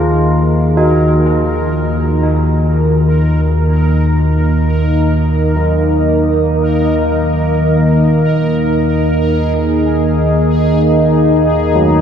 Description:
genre	dark ambient drone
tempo	free time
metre	none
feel	none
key	unclear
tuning	A4 = 440 Hz
part	deep dark ambient pad	sustained chords	0.0-12.0 s	Bb3 to Eb5	-16 LUFS	equal	chorus, built-in reverb, shimmer reverb
part	carillon bells	arpeggios	0.0-12.0 s	Eb3 to F4	-20 LUFS	right 1 dB	tape echo, shimmer reverb
part	analog drone	drone	0.0-12.0 s	Eb2 to Eb3	-13 LUFS	equal	chorus
part	bubbling stepped-filter texture	texture	0.0-12.0 s	Ab4 to Bb4	-22 LUFS	equal	chorus, built-in reverb, shimmer reverb
room	wet huge ambient reverb, RT60 8.9 s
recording	dreamy mix soaked in reverb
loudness	-10 LUFS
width	side -8 dB against mid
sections	0.0-12.0 A section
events	fade-in on ambient pad 0.0-12.0; fade-in on synth texture 0.0-12.0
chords	0.0 Eb5

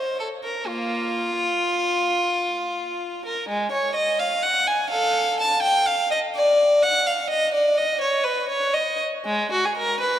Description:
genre	classical, baroque-style suite movement for unaccompanied violin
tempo	84 BPM (dotted quarters)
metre	12/8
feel	rubato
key	Eb minor from 3.5 s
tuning	A4 = 441 Hz
part	rich violin	solo	0.0-10.2 s	Ab3 to A5	-20 LUFS	equal	none
room	wet cathedral reverb, RT60 4.3 s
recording	dark, warm production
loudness	-20 LUFS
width	side -11 dB against mid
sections	0.0-10.2 A section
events	none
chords	none

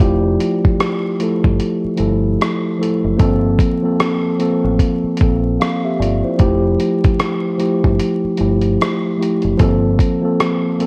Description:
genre	lo-fi hip hop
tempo	75 BPM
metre	4/4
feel	swing 61% on 16ths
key	unclear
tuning	A4 = 440 Hz
part	mellow tine electric piano	accompaniment	0.0-10.9 s	F3 to F5	-18 LUFS	equal	cassette tape, low-pass filter
part	deep dub fingered electric bass	bass	0.0-10.0 s	F1 to Bb1	-22 LUFS	equal	tube saturation
part	dusty soul sampler-style drum kit	drums	0.0-10.9 s	hi-hat, kick drum, rim click	-20 LUFS	equal	none
room	light reverb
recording	worn, warbling old tape, cassette tape, vinyl crackle, warbly pitch drift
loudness	-16 LUFS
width	mono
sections	0.0-10.9 A section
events	none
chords	0.0 Fmaj9; 3.2 Gm11; 6.4 Fmaj9; 9.6 Gm11

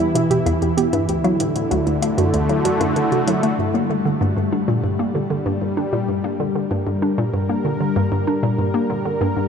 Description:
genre	ambient, sequencer-driven space music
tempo	96 BPM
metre	4/4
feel	straight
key	G minor from 3.6 s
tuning	A4 = 440 Hz
part	sweeping resonant pad	sustained chords	0.0-9.5 s	D3 to Bb4	-21 LUFS	left 1 dB	chorus, shimmer reverb
part	soft round pluck	arpeggios	0.0-9.3 s	G3 to G4	-27 LUFS	right 2 dB	none
part	hollow square pluck	riff	0.0-9.5 s	D2 to D4	-21 LUFS	equal	chorus, ping-pong delay
part	electronic hi-hat and woodblock	percussion	0.0-3.6 s	none	-30 LUFS	left 4 dB	ping-pong delay
room	wet huge ambient reverb, RT60 8.6 s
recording	none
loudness	-17 LUFS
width	side -7 dB against mid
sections	0.0-3.6 A section; 3.6-9.5 B section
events	filter sweep on synth arpeggio sound 0.0-3.6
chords	0.0 Em; 1.1 D; 3.6 Gm

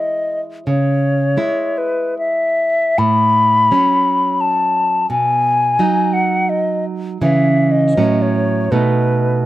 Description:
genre	romantic duo for flute and classical guitar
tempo	69-89 BPM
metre	3/4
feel	rubato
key	unclear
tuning	A4 = 440 Hz
part	hollow concert flute	melody	0.0-9.5 s	B4 to B5	-16 LUFS	left 2 dB	none
part	nylon-string guitar	accompaniment	0.0-9.5 s	A2 to E4	-17 LUFS	right 3 dB	none
room	light reverb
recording	recorded outdoors, with no room sound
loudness	-13 LUFS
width	side -14 dB against mid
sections	0.0-9.5 A section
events	none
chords	0.0 E; 0.7 C#m; 3.0 F#m/A; 5.1 B; 7.2 C#m; 8.0 F#m/A; 8.7 B7

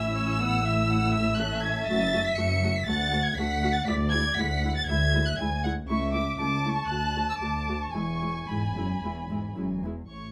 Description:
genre	quick classical-period movement for string orchestra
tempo	109-122 BPM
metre	4/4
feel	rubato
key	unclear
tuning	A4 = 440 Hz
part	muted chamber violin section	melody	0.0-10.3 s	B5 to C#7	-32 LUFS	equal	none
part	muted chamber violin section	second line	0.0-10.3 s	C#5 to A5	-34 LUFS	equal	none
part	muted chamber viola section	accompaniment	0.0-9.9 s	G#3 to A4	-35 LUFS	equal	none
part	muted chamber cello section	bass	0.0-10.3 s	C#2 to A2	-34 LUFS	equal	none
part	muted chamber double bass section	bass	0.0-10.3 s	E1 to D2	-34 LUFS	equal	none
room	light reverb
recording	none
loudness	-27 LUFS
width	mono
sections	0.0-10.1 A section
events	none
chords	0.0 A; 1.9 F#m; 2.9 D; 3.9 E7/D; 5.9 A/C#; 6.9 D; 8.0 E

